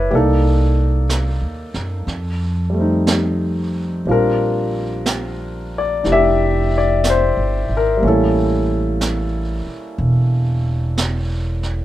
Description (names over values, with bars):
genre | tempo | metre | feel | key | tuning
jazz ballad | 61 BPM | 4/4 | swing 68% on 8ths | unclear | A4 = 439 Hz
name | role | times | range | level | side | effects
warm concert grand piano | accompaniment | 0.0-11.8 s | G3 to E5 | -19 LUFS | left 1 dB | none
upright bass | bass | 0.0-11.8 s | E1 to F#2 | -19 LUFS | equal | none
jazz brush drum kit | drums | 0.1-11.8 s | brushed snare drum, hi-hat, snare drum | -25 LUFS | right 3 dB | none
room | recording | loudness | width
light reverb | minimal, uncompressed stereo recording | -16 LUFS | side -14 dB against mid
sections
0.0-11.8 A section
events
none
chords
0.1 Cm9; 2.1 F9; 4.1 Bb69; 8.0 A7b9